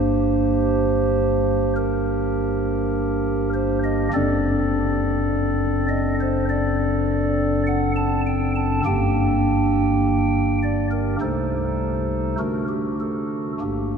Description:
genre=classical, chorale-style piece for pipe organ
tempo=51 BPM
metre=4/4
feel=rubato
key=G minor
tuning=A4 = 439 Hz
part: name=pipe organ, stopped flute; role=solo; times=0.0-14.0 s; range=F#1 to A5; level=-19 LUFS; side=equal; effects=none
room=wet cathedral reverb, RT60 4.8 s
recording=dark, warm production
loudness=-19 LUFS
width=side -6 dB against mid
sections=0.0-14.0 A section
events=none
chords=0.0 Gm; 4.1 D7/F#; 8.8 Gm; 11.2 Adim/C; 12.4 D

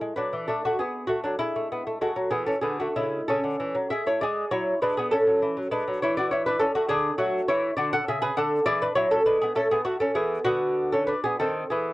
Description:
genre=classical, baroque-style dance for lute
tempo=60-68 BPM (dotted quarters)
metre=6/8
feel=rubato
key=A major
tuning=A4 = 442 Hz
part: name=lute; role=solo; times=0.0-11.9 s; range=C#3 to F#5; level=-23 LUFS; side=equal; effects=none
room=light reverb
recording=dark, warm production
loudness=-23 LUFS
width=side -18 dB against mid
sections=0.0-11.9 A section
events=none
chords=0.5 Bm7/A; 1.4 E; 3.3 A/C#; 4.2 E7; 5.1 A; 6.9 D; 7.8 Bm; 8.7 E7; 9.6 A; 10.5 Bm/D; 11.4 D#dim7(no3)

